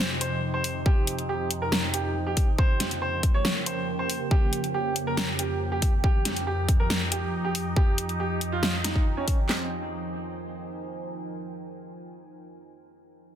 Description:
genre	heavy wobble dubstep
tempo	139 BPM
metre	4/4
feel	half-time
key	unclear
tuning	A4 = 440 Hz
part	warm baby grand piano	melody	0.0-9.7 s	C4 to Db5	-32 LUFS	right 2 dB	digital delay
part	evolving wavetable pad	sustained chords	0.0-9.7 s	F2 to G4	-31 LUFS	right 1 dB	phaser, built-in reverb, sidechain pumping
part	deep dark ambient pad	texture	0.1-11.2 s	F3 to Ab5	-40 LUFS	right 1 dB	chorus, built-in reverb, sidechain pumping
part	dubstep drum kit	drums	0.2-9.4 s	hi-hat, snare drum	-28 LUFS	left 1 dB	none
part	dubstep drum kit	drums	0.9-9.6 s	handclaps, kick drum, snare drum	-22 LUFS	equal	none
room	light reverb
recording	dense, heavily limited modern master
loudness	-24 LUFS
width	side -10 dB against mid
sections	0.0-9.5 A section; 9.5-11.2 B section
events	fade-out on ambient pad 0.0-9.5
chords	0.0 Cm/F; 2.6 Gdim/F; 6.0 Eb/F; 9.5 Fm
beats	0.00 0.43 | 0.86 1.29 1.72 2.15 | 2.58 3.02 3.45 3.88 | 4.31 4.74 5.17 5.61 | 6.04 6.47 6.90 7.33 | 7.76 8.20 8.63 9.06 | 9.49 9.92 10.36 10.79

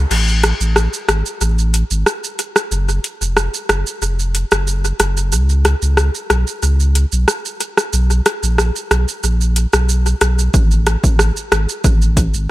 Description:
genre	dancehall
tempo	92 BPM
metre	4/4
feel	straight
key	unclear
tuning	A4 = 439 Hz
part	warm sub bass	bass	0.0-12.5 s	E#1 to C#2	-15 LUFS	equal	none
part	deep house drum kit	drums	0.1-12.5 s	crash cymbal, hi-hat, kick drum, rim click, shaker	-17 LUFS	equal	overdrive, tape echo
room	digital ambience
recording	echo-heavy mix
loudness	-14 LUFS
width	side -17 dB against mid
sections	0.1-12.5 A section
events	break 0.1-10.5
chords	none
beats	| 0.11 0.76 1.41 2.06 | 2.71 3.37 4.02 4.67 | 5.32 5.97 6.63 7.28 | 7.93 8.58 9.24 9.89 | 10.54 11.19 11.85

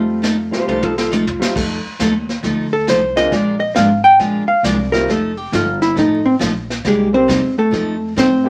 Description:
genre	country, western swing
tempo	136 BPM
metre	4/4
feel	swing 66% on 8ths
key	F mixolydian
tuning	A4 = 438 Hz
part	hollow-body jazz guitar	melody	0.0-8.5 s	Ab3 to Ab5	-17 LUFS	equal	none
part	clear upright piano	accompaniment	0.0-8.5 s	G3 to G4	-25 LUFS	equal	none
part	upright bass	bass	0.0-8.5 s	F1 to A2	-30 LUFS	equal	none
part	picked steel-string acoustic guitar	accompaniment	0.2-8.3 s	C3 to Bb4	-22 LUFS	equal	none
part	vintage brush drum kit	drums	0.2-8.5 s	brushed snare drum, crash cymbal, hi-hat, kick drum, snare drum, toms	-26 LUFS	equal	none
part	clean lap steel guitar	second line	0.5-1.5 s	F4 to C5	-23 LUFS	equal	none
room	wet small room reverb, RT60 0.5 s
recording	vinyl crackle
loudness	-16 LUFS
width	mono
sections	0.0-1.6 A section; 1.6-8.5 B section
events	drum fill 0.7-1.6; hollow-body jazz guitar solo 1.6-8.5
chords	0.0 F9; 1.6 F7; 3.3 Bb9; 5.1 F9; 6.8 Cm7; 7.7 F7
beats	0.23 0.68 1.12 | 1.56 2.00 2.44 2.88 | 3.32 3.76 4.20 4.64 | 5.08 5.52 5.96 6.40 | 6.84 7.28 7.72 8.16

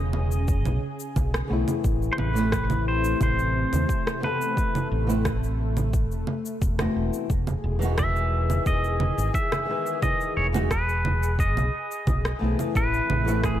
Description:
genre	sunset chillout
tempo	88 BPM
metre	4/4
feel	straight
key	E major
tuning	A4 = 440 Hz
part	pedal steel guitar	melody	0.0-13.6 s	G#4 to E5	-28 LUFS	equal	tape echo
part	lush unison pad	sustained chords	0.0-13.6 s	C3 to G#4	-33 LUFS	left 1 dB	chorus
part	fretless electric bass	bass	0.0-13.6 s	E1 to D#2	-26 LUFS	equal	none
part	electronic congas, cabasa and rim click	drums	0.1-13.6 s	none	-30 LUFS	right 2 dB	overdrive
part	electronic kick drum	drums	0.5-13.6 s	none	-27 LUFS	equal	overdrive
part	flamenco guitar	accompaniment	1.5-13.6 s	D#3 to B4	-30 LUFS	moving between left 6 dB and right 4 dB	auto-pan, tape echo
room	little or no reverb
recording	none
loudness	-22 LUFS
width	side -12 dB against mid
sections	0.0-13.6 A section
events	none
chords	0.0 Emaj7; 1.8 Amadd9; 7.3 Emaj7; 12.8 Amadd9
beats	0.48 1.16 | 1.84 2.52 3.21 3.89 | 4.57 5.25 5.93 6.62 | 7.30 7.98 8.66 9.34 | 10.02 10.71 11.39 12.07 | 12.75 13.43

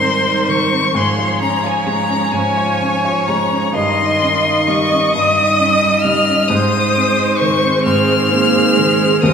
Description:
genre	classical, slow romantic movement for piano quintet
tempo	43 BPM (dotted quarters)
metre	6/8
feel	rubato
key	Ab major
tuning	A4 = 440 Hz
part	rich violin	melody	0.0-9.3 s	Ab5 to F6	-17 LUFS	left 4 dB	none
part	rich cello	second line	0.0-9.3 s	Eb3 to C4	-22 LUFS	right 6 dB	none
part	rich violin	second line	0.0-9.3 s	Ab4 to Eb5	-21 LUFS	left 2 dB	none
part	dark grand piano	accompaniment	0.0-9.3 s	Eb2 to F4	-19 LUFS	right 1 dB	none
part	rich viola	accompaniment	0.0-9.3 s	Ab4 to Eb5	-20 LUFS	right 3 dB	none
room	wet church reverb, RT60 3.5 s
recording	recorded in a church or concert hall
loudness	-12 LUFS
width	side -7 dB against mid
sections	0.0-9.3 A section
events	none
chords	0.0 Ab; 1.0 Bbm7/Ab; 3.7 Eb7/G; 6.5 Ab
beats	| 0.96 2.34 | 3.74 5.14 | 6.50 7.85 | 9.21

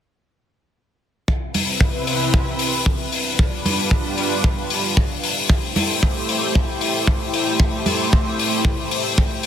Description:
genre	nu-disco, nu disco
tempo	114 BPM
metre	4/4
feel	swing 54% on 16ths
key	A minor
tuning	A4 = 439 Hz
part	lush unison pad	sustained chords	1.6-9.5 s	C3 to C5	-24 LUFS	right 1 dB	chorus, phaser, sidechain pumping
part	kick drum	drums	1.3-9.3 s	none	-18 LUFS	equal	soft clipping on kick
part	hi-hat	drums	1.5-9.5 s	none	-23 LUFS	left 5 dB	none
part	congas	percussion	1.5-8.0 s	none	-24 LUFS	right 3 dB	none
room	light reverb, small room ambience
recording	dense, heavily limited modern master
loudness	-17 LUFS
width	side -9 dB against mid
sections	1.3-9.5 A section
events	none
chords	1.3 Cmaj7; 3.1 G7; 5.2 Am7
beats	| 1.28 1.81 2.34 2.86 | 3.39 3.92 4.44 4.97 | 5.49 6.02 6.55 7.07 | 7.60 8.13 8.65 9.18

